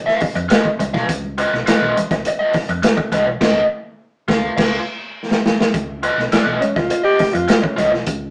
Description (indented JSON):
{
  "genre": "funk",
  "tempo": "103 BPM",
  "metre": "4/4",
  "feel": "straight",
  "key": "Db mixolydian",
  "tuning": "A4 = 440 Hz",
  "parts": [
    { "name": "raw garage guitar", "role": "accompaniment", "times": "0.1-8.0 s", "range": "F4 to F5", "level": "-21 LUFS", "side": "equal", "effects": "wah, overdrive" },
    { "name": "crunchy breakbeat drum kit", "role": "drums", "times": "0.1-8.2 s", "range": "crash cymbal, hi-hat, kick drum, snare drum", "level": "-21 LUFS", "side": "equal", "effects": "none" },
    { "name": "hollow-body short-scale fingered electric bass", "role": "bass", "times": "0.2-8.3 s", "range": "Cb2 to F2", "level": "-30 LUFS", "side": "equal", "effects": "none" },
    { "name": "congas", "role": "percussion", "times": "0.5-7.9 s", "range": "none", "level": "-30 LUFS", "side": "equal", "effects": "none" },
    { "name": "mellow alto saxophone", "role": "melody", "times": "6.6-7.9 s", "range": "Db4 to G4", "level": "-20 LUFS", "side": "equal", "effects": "none" }
  ],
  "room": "wet studio reverb, RT60 0.5 s",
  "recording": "band playing live in one room, small speaker sound",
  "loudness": "-17 LUFS",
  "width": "mono",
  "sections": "0.0-5.7 A section; 5.7-8.3 B section",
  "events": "band accent 3.4-5.7; drum fill 4.6-5.7; alto saxophone solo 5.7-8.3",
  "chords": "0.0 Db9"
}